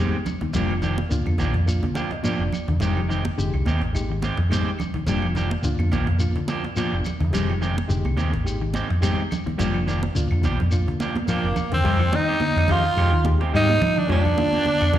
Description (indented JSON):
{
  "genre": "afrobeat",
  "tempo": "106 BPM",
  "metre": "4/4",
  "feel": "swing 56% on 16ths",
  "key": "F dorian",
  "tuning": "A4 = 442 Hz",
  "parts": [
    { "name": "reed electric piano", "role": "accompaniment", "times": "0.0-15.0 s", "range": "Ab3 to G5", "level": "-32 LUFS", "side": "left 2 dB", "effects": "overdrive, fast tremolo, plate reverb, slapback echo" },
    { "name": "mellow electric guitar", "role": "arpeggios", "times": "0.0-15.0 s", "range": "D3 to G3", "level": "-29 LUFS", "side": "left 6 dB", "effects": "slapback echo" },
    { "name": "electric guitar at the edge of break-up", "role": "stabs", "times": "0.0-15.0 s", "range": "Eb3 to G4", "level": "-29 LUFS", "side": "right 5 dB", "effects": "plate reverb, slapback echo" },
    { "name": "hollow-body short-scale fingered electric bass", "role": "bass", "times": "0.0-15.0 s", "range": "F1 to F3", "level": "-22 LUFS", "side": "equal", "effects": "none" },
    { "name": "cajon", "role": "drums", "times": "0.1-15.0 s", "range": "none", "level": "-32 LUFS", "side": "equal", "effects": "none" },
    { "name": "claves", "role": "percussion", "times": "0.3-14.9 s", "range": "none", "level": "-42 LUFS", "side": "left 3 dB", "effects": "slapback echo" },
    { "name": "congas", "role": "percussion", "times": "0.3-15.0 s", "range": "none", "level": "-30 LUFS", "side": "right 4 dB", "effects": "none" },
    { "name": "shekere", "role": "percussion", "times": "0.3-11.7 s", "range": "none", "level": "-30 LUFS", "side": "equal", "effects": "none" },
    { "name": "raspy tenor saxophone", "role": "melody", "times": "11.3-15.0 s", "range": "Bb3 to F4", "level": "-22 LUFS", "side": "equal", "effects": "plate reverb, slapback echo" },
    { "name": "bright trombone", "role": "second line", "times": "11.3-15.0 s", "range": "Bb3 to F4", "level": "-28 LUFS", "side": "right 4 dB", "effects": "plate reverb, slapback echo, tape echo" }
  ],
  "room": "moderate club reverb, RT60 0.6 s",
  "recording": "live gig heard through the venue's PA, recital hall reverb",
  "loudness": "-20 LUFS",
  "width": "side -12 dB against mid",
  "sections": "0.0-11.9 A section; 11.9-15.0 B section",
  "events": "reed electric piano fill 1.7-2.8; drum fill 11.1-11.9",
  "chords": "0.0 Fm9; 0.5 Gm7/F; 2.8 Fm9; 5.1 Gm7/F; 7.3 Fm9; 9.6 Gm7/F; 11.9 Fm9; 14.1 Gm7/F",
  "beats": "| 0.54 1.11 1.67 2.24 | 2.80 3.37 3.94 4.50 | 5.07 5.63 6.20 6.77 | 7.33 7.90 8.46 9.03 | 9.60 10.16 10.72 11.29 | 11.85 12.41 12.98 13.54 | 14.10 14.66"
}